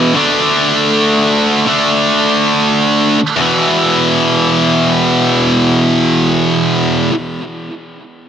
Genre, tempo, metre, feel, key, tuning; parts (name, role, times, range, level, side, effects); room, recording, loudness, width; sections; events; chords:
metal; free time; A4 = 440 Hz
heavy high-gain guitar; solo; 0.0-7.1 s; E2 to D4; -10 LUFS; equal; distortion, tape echo
light reverb; -10 LUFS; side -8 dB against mid
0.0-3.4 A section; 3.4-6.4 B section
0.1 D5; 3.4 E5